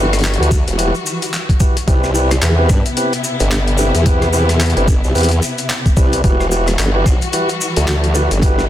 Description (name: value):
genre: glitch hop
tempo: 110 BPM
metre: 4/4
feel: swing 59% on 16ths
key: E minor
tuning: A4 = 440 Hz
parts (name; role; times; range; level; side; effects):
- warm studio string section; sustained chords; 0.0-8.7 s; C3 to F#4; -23 LUFS; left 2 dB; sidechain pumping
- tonewheel organ; stabs; 0.0-8.7 s; C4 to B4; -20 LUFS; right 1 dB; stopped rotary speaker, sidechain pumping, tape echo
- formant-sweep wobble bass; bass; 0.0-8.7 s; E1 to G2; -15 LUFS; equal; chorus, tube saturation
- boom bap sampler-style drum kit; drums; 0.1-8.7 s; handclaps, hi-hat, rim click; -22 LUFS; left 2 dB; overdrive
- maracas; percussion; 0.1-8.7 s; none; -27 LUFS; left 3 dB; none
- electronic kick drum; drums; 0.5-8.6 s; none; -14 LUFS; equal; overdrive
room: little or no reverb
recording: dense, heavily limited modern master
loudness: -12 LUFS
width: side -12 dB against mid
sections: 0.0-8.7 A section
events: none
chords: 0.0 Emadd9; 1.9 Cmaj7; 6.2 Emadd9